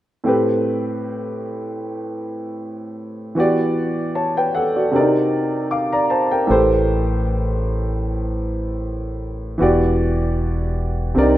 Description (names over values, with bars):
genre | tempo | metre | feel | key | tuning
R&B | 77 BPM | 4/4 | swing 55% on 16ths | A dorian | A4 = 440 Hz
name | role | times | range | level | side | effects
warm grand piano | accompaniment | 0.2-11.4 s | A2 to D6 | -18 LUFS | equal | none
deep dub fingered electric bass | bass | 6.5-11.4 s | E1 to C2 | -21 LUFS | equal | none
room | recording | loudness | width
moderate plate reverb, RT60 3.5 s | rough home demo mix | -18 LUFS | side -14 dB against mid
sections
0.2-11.4 A section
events
none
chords
0.2 Am9; 3.4 Em9; 4.9 Cm9; 6.5 Am9; 9.6 Em9